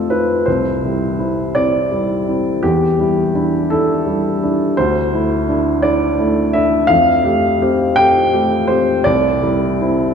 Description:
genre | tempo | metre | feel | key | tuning
neoclassical minimalist piano | 56 BPM (dotted quarters) | 6/8 | rubato | unclear | A4 = 439 Hz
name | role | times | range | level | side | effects
warm upright piano | solo | 0.0-10.1 s | C2 to G5 | -13 LUFS | equal | none
room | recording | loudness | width
wet church reverb, RT60 3.2 s | recorded in a church or concert hall | -13 LUFS | side -6 dB against mid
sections
0.0-10.1 A section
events
none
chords
0.5 C; 2.6 Em7; 4.8 Dsus2; 6.9 Fadd9; 9.1 C

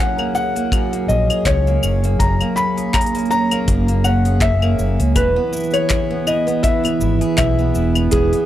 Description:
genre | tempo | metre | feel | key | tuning
folktronica | 81 BPM | 4/4 | swing 56% on 16ths | F# mixolydian | A4 = 438 Hz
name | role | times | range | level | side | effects
felt-muted upright piano | melody | 0.0-8.5 s | G#4 to B5 | -20 LUFS | left 2 dB | tape echo
warbly tape-like pad | sustained chords | 0.0-8.5 s | E3 to G#4 | -22 LUFS | right 2 dB | chorus, built-in reverb
picked old ladder-braced acoustic guitar | arpeggios | 0.0-8.5 s | F#2 to G#4 | -24 LUFS | right 4 dB | tape echo
organic electronic drum kit | drums | 0.2-8.5 s | claves, handclaps, hi-hat, shaker | -24 LUFS | left 3 dB | none
kick drum | drums | 0.7-8.3 s | none | -23 LUFS | equal | none
overdriven fingered electric bass | bass | 1.1-8.3 s | E1 to C#2 | -17 LUFS | equal | none
room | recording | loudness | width
small room reverb | none | -15 LUFS | side -12 dB against mid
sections
0.0-8.5 A section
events
none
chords
0.0 F#add9; 5.2 E

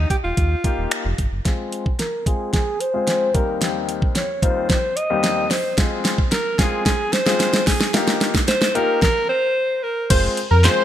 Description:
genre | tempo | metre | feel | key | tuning
dance-pop | 111 BPM | 4/4 | straight | F minor | A4 = 440 Hz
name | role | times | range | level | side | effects
breathy alto saxophone | melody | 0.0-10.1 s | F4 to Eb5 | -22 LUFS | equal | low-pass filter, digital delay
sub bass with octave | bass | 0.0-1.4, 10.1-10.7 s | Eb1 to F2 | -18 LUFS | equal | sidechain pumping
smooth R&B drum kit | drums | 0.1-10.8 s | crash cymbal, finger snaps, handclaps, hi-hat, kick drum, snare drum | -20 LUFS | equal | gated reverb
clear concert grand piano | accompaniment | 0.6-10.8 s | Eb2 to C5 | -25 LUFS | left 4 dB | sidechain pumping, low-pass filter
wide unison lead | melody | 10.1-10.8 s | Bb4 to C5 | -19 LUFS | left 1 dB | sidechain pumping
room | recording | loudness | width
light reverb, digital ambience | bright 1980s-style digital production | -17 LUFS | side -11 dB against mid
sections
0.0-1.5 A section; 1.5-10.1 B section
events
build-up 1.5-10.1; drum fill 1.5-9.0; filter sweep 1.5-10.1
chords
0.0 Ebadd9; 1.5 Fm; 3.3 Cm/Eb; 5.8 Fm; 7.9 Ebadd9; 10.1 Fm

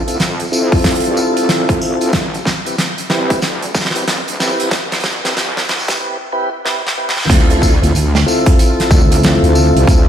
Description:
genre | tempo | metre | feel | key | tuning
glitch hop | 93 BPM | 4/4 | swing 63% on 16ths | D dorian | A4 = 438 Hz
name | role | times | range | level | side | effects
mellow tonewheel organ | stabs | 0.0-10.1 s | C4 to B4 | -17 LUFS | equal | slow rotary speaker, sidechain pumping, low-pass filter, dub echo
wobble bass | bass | 0.0-10.1 s | A1 to G2 | -17 LUFS | equal | chorus, high-pass filter
huge arena drum kit | drums | 0.1-10.0 s | crash cymbal, hi-hat, snare drum, tambourine | -17 LUFS | right 1 dB | none
electronic kick drum | drums | 0.7-10.0 s | none | -14 LUFS | equal | overdrive
room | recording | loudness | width
light reverb, studio reverb | played on a big sound system in a bare room, stone room reverb, high-pass filter | -12 LUFS | side -9 dB against mid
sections
0.0-7.3 A section; 7.3-10.1 B section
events
build-up 0.0-7.3; drum fill 0.0-6.0, 6.7-7.3; filter sweep on tonewheel organ 0.0-7.3; filter sweep 0.0-7.3; drop 7.3-10.1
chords
0.0 Dm9; 2.1 Am7; 7.3 Dm9

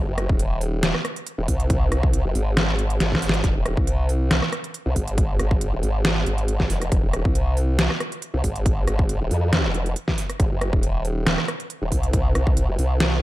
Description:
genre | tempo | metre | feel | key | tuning
heavy wobble dubstep | 138 BPM | 4/4 | swing 53% on 16ths, half-time | F phrygian | A4 = 437 Hz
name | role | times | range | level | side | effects
formant-sweep wobble bass | bass | 0.0-13.2 s | Eb1 to F2 | -22 LUFS | equal | chorus, overdrive
dubstep drum kit | drums | 0.2-13.1 s | hi-hat, rim click, snare drum | -24 LUFS | right 1 dB | none
electronic kick drum | drums | 0.3-12.5 s | none | -22 LUFS | equal | none
room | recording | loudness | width
digital ambience | dark, warm production | -20 LUFS | side -16 dB against mid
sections
0.0-13.2 A section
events
drum fill 3.0-3.4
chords
none

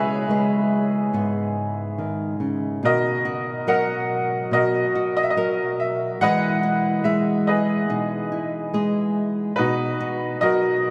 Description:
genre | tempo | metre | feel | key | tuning
acoustic folk-pop ballad | 71 BPM | 4/4 | straight | B major | A4 = 440 Hz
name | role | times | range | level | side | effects
bright upright piano | melody | 0.0-10.9 s | D#4 to F#5 | -25 LUFS | equal | none
nylon-string guitar | accompaniment | 0.0-10.9 s | G#2 to B4 | -25 LUFS | equal | none
room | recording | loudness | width
wet cathedral reverb, RT60 6.2 s | in a vast, echoing space | -22 LUFS | mono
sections
0.0-10.9 A section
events
none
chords
0.0 C#m7; 2.8 Bmaj7; 6.2 Emaj7; 9.6 Bmaj7

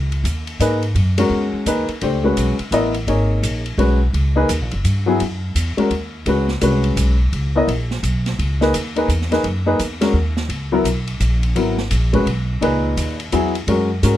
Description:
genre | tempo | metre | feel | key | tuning
modal jazz | 170 BPM | 3/4 | swing 63% on 8ths | unclear | A4 = 440 Hz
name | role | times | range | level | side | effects
upright bass | bass | 0.0-14.2 s | F#1 to G#2 | -19 LUFS | equal | none
open jazz drum kit | drums | 0.1-14.1 s | hi-hat, kick drum, ride cymbal, snare drum | -28 LUFS | equal | none
warm baby grand piano | accompaniment | 0.6-14.2 s | A#2 to D#5 | -18 LUFS | left 2 dB | none
room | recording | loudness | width
little or no reverb | close, detailed microphones | -16 LUFS | side -13 dB against mid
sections
0.0-14.2 A section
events
none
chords
0.0 D#m/C#; 2.0 C#7sus2; 4.1 D#m; 6.3 C#7(no3); 8.4 D#m/C#; 10.5 C#m7; 12.6 D#m/C#

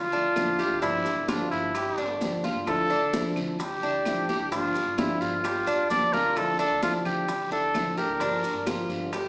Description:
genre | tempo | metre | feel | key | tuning
latin, Cuban son and guajira | 130 BPM | 4/4 | straight | D minor | A4 = 438 Hz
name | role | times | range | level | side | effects
warm trumpet | melody | 0.0-8.9 s | D4 to D5 | -26 LUFS | equal | none
upright bass | bass | 0.0-9.3 s | G1 to F2 | -42 LUFS | equal | none
nylon-string guitar | accompaniment | 0.1-9.2 s | D3 to G4 | -32 LUFS | equal | none
Cuban tres | arpeggios | 0.1-9.3 s | D4 to G4 | -31 LUFS | right 1 dB | none
congas | percussion | 0.1-9.3 s | none | -35 LUFS | equal | none
bongos | percussion | 0.4-9.3 s | none | -37 LUFS | left 1 dB | none
claves | percussion | 0.4-9.3 s | none | -46 LUFS | left 2 dB | none
guiro | percussion | 0.4-9.3 s | none | -42 LUFS | equal | none
maracas | percussion | 0.4-9.3 s | none | -47 LUFS | right 2 dB | none
room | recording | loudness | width
wet recital hall reverb, RT60 1.3 s | recorded in a church or concert hall, small speaker sound | -24 LUFS | side -25 dB against mid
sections
0.0-9.3 A section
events
drum fill 6.1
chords
0.0 Dmadd9; 0.8 Gm7; 2.7 Dmadd9; 4.5 Gm7; 6.4 Dmadd9; 8.2 Gm7

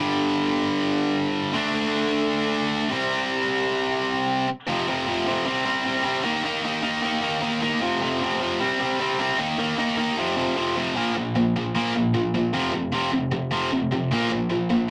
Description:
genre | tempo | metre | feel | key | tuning
punk | 153 BPM | 4/4 | straight | unclear | A4 = 440 Hz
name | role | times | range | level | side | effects
tight distorted guitar | solo | 0.0-14.9 s | F2 to Eb4 | -24 LUFS | equal | distortion
room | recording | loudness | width
moderate booth ambience, RT60 0.2 s | rough rehearsal-room recording, tube saturation | -24 LUFS | mono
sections
0.0-4.7 A section; 4.7-11.0 B section; 11.0-14.9 C section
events
none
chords
0.0 G5; 1.5 D5; 2.9 C5; 4.7 F5; 5.5 C5; 6.2 Eb5; 7.8 F5; 8.6 C5; 9.4 Eb5; 10.2 F5; 11.0 Bb5; 12.5 F5; 14.1 Bb5

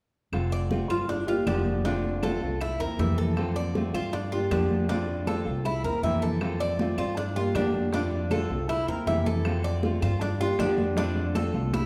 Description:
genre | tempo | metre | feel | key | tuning
latin, Cuban son and guajira | 158 BPM | 4/4 | straight | F major | A4 = 440 Hz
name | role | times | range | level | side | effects
nylon-string guitar | accompaniment | 0.3-11.8 s | C3 to G4 | -32 LUFS | equal | none
upright bass | bass | 0.3-11.9 s | F1 to G2 | -32 LUFS | equal | none
bongos | percussion | 0.3-11.9 s | none | -41 LUFS | equal | none
claves | percussion | 0.3-11.9 s | none | -47 LUFS | equal | none
congas | percussion | 0.3-11.8 s | none | -37 LUFS | equal | none
Cuban tres | arpeggios | 0.5-11.9 s | D4 to E5 | -33 LUFS | equal | none
room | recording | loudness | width
wet recital hall reverb, RT60 1.8 s | recorded in a church or concert hall | -27 LUFS | mono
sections
0.3-11.9 A section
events
drum fill 5.7-6.4, 11.5-11.9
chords
0.3 F6; 1.1 Gm7; 1.9 F6; 2.6 C7; 3.4 F6; 4.1 Gm7; 4.9 F6; 5.7 C7; 6.4 F6; 7.2 Gm7; 7.9 F6; 8.7 C7; 9.5 F6; 10.2 Gm7; 11.0 F6

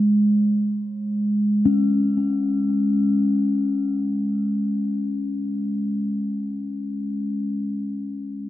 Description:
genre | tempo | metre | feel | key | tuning
world meditative, free-time meditation music | free time | none | none | unclear | A4 = 439 Hz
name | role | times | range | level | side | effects
bronze singing bowl | solo | 0.0-8.5 s | Ab3 to Db4 | -20 LUFS | left 1 dB | tape echo
room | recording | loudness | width
wet plate reverb, RT60 2.6 s | echo-heavy mix, cassette tape | -20 LUFS | side -14 dB against mid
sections
0.0-8.5 A section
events
none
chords
none

